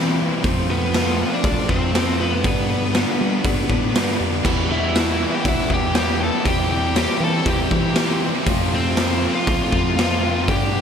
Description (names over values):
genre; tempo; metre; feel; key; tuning
quiet-loud alternative rock; 119 BPM; 4/4; straight; unclear; A4 = 440 Hz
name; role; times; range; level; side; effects
high-gain lead guitar; melody; 0.0-10.8 s; B3 to A5; -24 LUFS; left 2 dB; distortion
phased string machine; sustained chords; 0.0-10.8 s; G4 to C6; -35 LUFS; right 1 dB; none
thick fuzz guitar; riff; 0.0-10.8 s; G2 to F4; -26 LUFS; left 11 dB; distortion, slapback echo
thick fuzz guitar; riff; 0.0-10.8 s; G2 to F4; -26 LUFS; right 12 dB; distortion, slapback echo
growling fingered electric bass; bass; 0.0-10.8 s; B1 to G3; -25 LUFS; equal; overdrive
raw garage drum kit; drums; 0.4-10.6 s; crash cymbal, hi-hat, kick drum, snare drum; -21 LUFS; equal; none
tight distorted guitar; riff; 4.4-10.8 s; E2 to C4; -28 LUFS; left 1 dB; distortion, slapback echo
room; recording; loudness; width
light reverb; none; -17 LUFS; side -7 dB against mid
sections
0.0-10.8 A section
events
none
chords
0.4 F; 2.4 G; 4.4 Em; 6.5 Cadd9/E; 8.5 F